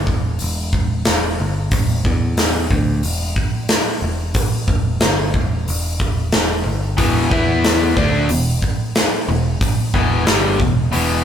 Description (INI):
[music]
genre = hard rock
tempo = 91 BPM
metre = 4/4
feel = straight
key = E minor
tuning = A4 = 440 Hz
[part]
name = modern bright picked electric bass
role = bass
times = 0.0-11.2 s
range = E1 to E2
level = -21 LUFS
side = equal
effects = none
[part]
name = big rock drum kit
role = drums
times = 0.1-11.1 s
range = hi-hat, kick drum, snare drum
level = -18 LUFS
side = equal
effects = none
[part]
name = biting overdriven guitar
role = riff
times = 7.0-11.2 s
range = E2 to E4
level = -18 LUFS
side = left 1 dB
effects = none
[sound]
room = light reverb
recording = band playing live in one room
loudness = -15 LUFS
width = side -9 dB against mid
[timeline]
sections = 0.0-11.2 A section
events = none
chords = 0.0 Em